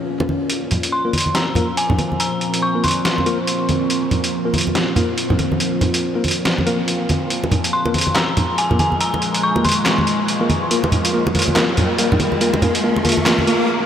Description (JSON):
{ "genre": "deep dubstep", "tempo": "141 BPM", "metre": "4/4", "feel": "swing 59% on 16ths, half-time", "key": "unclear", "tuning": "A4 = 442 Hz", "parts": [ { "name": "overtone-sweeping drone", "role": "sustained chords", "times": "0.0-13.7 s", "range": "Bb2 to Db4", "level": "-23 LUFS", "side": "equal", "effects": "chorus, built-in reverb" }, { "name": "flickering grainy texture", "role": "texture", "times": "0.0-0.5 s", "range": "F5", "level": "-48 LUFS", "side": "right 1 dB", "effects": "none" }, { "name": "congas", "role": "percussion", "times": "0.2-13.5 s", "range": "none", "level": "-22 LUFS", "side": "right 1 dB", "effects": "none" }, { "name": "trip hop sampler-style drum kit", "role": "drums", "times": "0.5-13.6 s", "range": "handclaps, hi-hat, snare drum", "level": "-21 LUFS", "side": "equal", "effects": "low-pass filter on hats, studio reverb, low-pass filter on snare" }, { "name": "dark detuned synth bell", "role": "melody", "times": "0.9-3.6, 7.7-10.5 s", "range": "Ab5 to Db6", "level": "-23 LUFS", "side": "left 1 dB", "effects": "chorus, low-pass filter, dub echo" }, { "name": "tine electric piano", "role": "stabs", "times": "1.0-13.6 s", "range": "Bb3 to Bb4", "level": "-23 LUFS", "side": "left 1 dB", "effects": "medium stereo tremolo, dub echo" }, { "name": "riser and swell", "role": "sound effects", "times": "9.3-13.9 s", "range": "none", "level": "-24 LUFS", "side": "equal", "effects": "none" } ], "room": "wet huge ambient reverb, RT60 8.3 s", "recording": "dreamy mix soaked in reverb", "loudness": "-16 LUFS", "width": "side -9 dB against mid", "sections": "0.5-13.9 A section", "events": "build-up 0.5-13.9; riser 9.3-13.7; swell 13.3-13.9; break 13.7", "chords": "0.5 Bb5" }